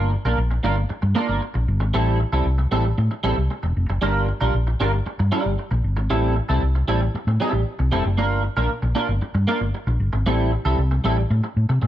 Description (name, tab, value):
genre	disco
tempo	115 BPM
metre	4/4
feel	straight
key	G dorian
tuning	A4 = 441 Hz
part	clean electric guitar	accompaniment	0.0-11.9 s	G3 to Bb4	-24 LUFS	right 2 dB	analog chorus
part	hollow-body short-scale fingered electric bass	bass	0.0-11.9 s	E1 to C3	-20 LUFS	equal	none
room	light reverb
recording	none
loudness	-19 LUFS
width	side -12 dB against mid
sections	0.0-11.9 A section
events	none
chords	0.0 Gm7; 1.9 Am7; 4.0 Gm7; 6.1 Am7; 8.2 Gm7; 10.3 Am7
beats	0.38 0.90 1.42 | 1.94 2.46 2.98 3.50 | 4.02 4.54 5.06 5.58 | 6.10 6.62 7.14 7.66 | 8.18 8.70 9.22 9.74 | 10.26 10.78 11.30 11.82